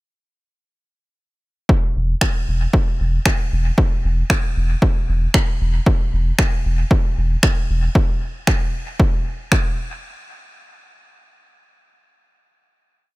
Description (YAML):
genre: dub techno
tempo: 115 BPM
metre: 4/4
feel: swing 55% on 16ths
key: unclear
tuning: A4 = 440 Hz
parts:
  - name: electronic kick drum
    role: drums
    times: 1.7-9.6 s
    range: none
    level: -17 LUFS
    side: equal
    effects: overdrive
  - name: soft dub sub bass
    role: bass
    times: 2.0-7.9 s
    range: E1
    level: -18 LUFS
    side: equal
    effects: sidechain pumping
  - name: electronic finger snaps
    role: drums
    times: 2.2-9.6 s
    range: none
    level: -23 LUFS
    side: equal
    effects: overdrive, dub echo
room: little or no reverb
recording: none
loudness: -16 LUFS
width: side -21 dB against mid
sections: 1.7-10.0 groove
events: none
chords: none